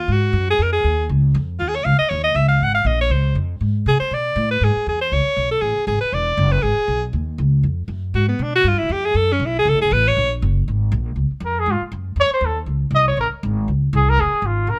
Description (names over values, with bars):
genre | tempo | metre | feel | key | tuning
jazz, small-group swing and bop | 238 BPM | 4/4 | swing 58% on 8ths | Db major | A4 = 442 Hz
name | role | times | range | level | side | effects
bright alto saxophone | second line | 0.0-10.3 s | Cb4 to Gb5 | -21 LUFS | equal | none
upright bass | bass | 0.0-14.8 s | E1 to C3 | -22 LUFS | equal | none
trumpet with bucket mute | melody | 11.5-14.8 s | F4 to Eb5 | -20 LUFS | equal | none
room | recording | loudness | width
little or no reverb | none | -19 LUFS | mono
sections
0.0-3.1 A section; 3.1-11.2 A section; 11.2-14.8 A section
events
alto saxophone solo 0.0-11.2; muted trumpet solo 11.2-14.8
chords
0.1 Ab5; 1.1 Dbadd9; 2.1 Dbmadd9; 2.6 Absus2; 3.1 Dbmaj7; 4.1 Cbm7; 4.6 Eaug; 5.1 Amaj9; 6.1 E7; 7.1 Ebm9; 8.1 Abm7b5; 8.7 G5; 9.2 Gbm; 10.2 Gb; 10.7 Absus2; 11.2 Db; 12.2 F5; 13.2 Bbm9; 14.2 Fm